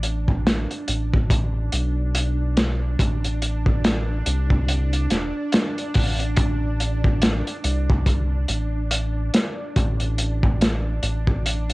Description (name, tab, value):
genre	trip hop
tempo	71 BPM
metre	4/4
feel	swing 59% on 16ths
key	A minor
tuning	A4 = 440 Hz
part	round analog bass	bass	0.0-11.7 s	E1 to C2	-23 LUFS	equal	none
part	crunchy breakbeat drum kit	drums	0.0-11.7 s	hi-hat, kick drum, snare drum	-21 LUFS	equal	none
part	bowed-like drone	texture	0.0-11.7 s	D4	-31 LUFS	right 2 dB	built-in reverb, cassette tape
room	light reverb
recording	home recording on cassette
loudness	-20 LUFS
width	side -22 dB against mid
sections	0.0-11.7 A section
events	none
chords	0.0 Asus24; 3.0 Am; 9.8 Asus4